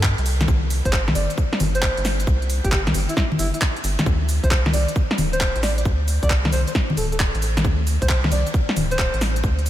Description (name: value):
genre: UK garage, two-step garage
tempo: 134 BPM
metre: 4/4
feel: swing 67% on 16ths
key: unclear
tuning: A4 = 440 Hz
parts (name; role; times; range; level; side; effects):
- rubbery square bass; bass; 0.0-9.7 s; D1 to G2; -22 LUFS; equal; none
- electronic kick drum; drums; 0.0-9.6 s; none; -22 LUFS; equal; none
- garage drum kit; drums; 0.0-9.7 s; cabasa, congas, handclaps, hi-hat, snare drum; -23 LUFS; left 1 dB; none
- breathy alto saxophone; melody; 0.9-9.2 s; E4 to D5; -28 LUFS; equal; ping-pong delay
room: light reverb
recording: none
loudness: -18 LUFS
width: side -13 dB against mid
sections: 0.0-9.7 A section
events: none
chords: 0.3 C5; 4.1 D7(no3)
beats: 0.03 | 0.48 0.93 1.38 1.82 | 2.27 2.72 3.17 3.62 | 4.06 4.51 4.96 5.41 | 5.85 6.30 6.75 7.20 | 7.64 8.09 8.54 8.99 | 9.44